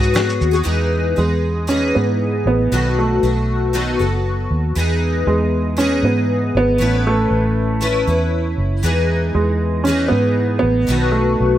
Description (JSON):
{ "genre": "acoustic pop", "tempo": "118 BPM", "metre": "4/4", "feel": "straight", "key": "E major", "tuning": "A4 = 440 Hz", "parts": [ { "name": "picked twelve-string acoustic guitar", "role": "accompaniment", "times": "0.0-11.6 s", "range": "B2 to B4", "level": "-20 LUFS", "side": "left 2 dB", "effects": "analog chorus" }, { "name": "vintage muted fingered electric bass", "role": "bass", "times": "0.0-11.6 s", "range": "F#1 to G#2", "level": "-19 LUFS", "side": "equal", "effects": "none" }, { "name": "electronic shaker and snare drum", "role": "drums", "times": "0.0-0.7 s", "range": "none", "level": "-20 LUFS", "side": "equal", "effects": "none" }, { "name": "warm upright piano", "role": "melody", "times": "1.2-11.6 s", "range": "G#3 to C#4", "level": "-19 LUFS", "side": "right 2 dB", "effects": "digital delay" } ], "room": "small room ambience", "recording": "none", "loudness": "-15 LUFS", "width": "side -12 dB against mid", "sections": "0.7-11.6 A section", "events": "none", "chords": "0.0 Eadd9 (rootless); 0.7 Emaj7; 2.7 B7; 4.8 Emaj7; 6.8 Aadd9; 8.8 Emaj7; 10.9 B7" }